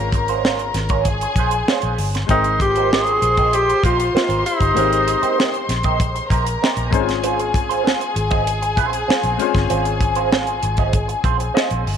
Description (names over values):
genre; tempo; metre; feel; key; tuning
lush 1970s-style soul; 97 BPM; 4/4; straight; unclear; A4 = 445 Hz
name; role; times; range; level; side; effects
rich studio string section; second line; 0.0-11.8 s; Ab4 to C6; -24 LUFS; left 4 dB; none
clear baby grand piano; accompaniment; 0.0-12.0 s; Ab3 to G5; -27 LUFS; left 13 dB; none
electric guitar through a small old amp; riff; 0.0-11.9 s; Ab3 to Eb5; -24 LUFS; right 12 dB; wah
vintage muted fingered electric bass; bass; 0.0-12.0 s; G1 to Bb1; -24 LUFS; equal; none
tight funk drum kit; drums; 0.1-12.0 s; hi-hat, kick drum, snare drum; -21 LUFS; equal; none
breathy tenor saxophone; melody; 2.3-5.7 s; Eb4 to Ab4; -18 LUFS; right 1 dB; none
vibraphone with medium hard mallets; texture; 2.6-10.3 s; F4 to C5; -31 LUFS; left 14 dB; stereo widening
room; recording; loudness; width
moderate spring reverb, RT60 1.8 s, small room ambience; 1960s-style stereo with parts hard left and right; -16 LUFS; side -8 dB against mid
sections
0.0-12.0 A section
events
grand piano fill 11.2-12.0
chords
0.0 Dbmaj7/Ab; 2.3 Abmaj9; 6.9 Dbmaj7/Ab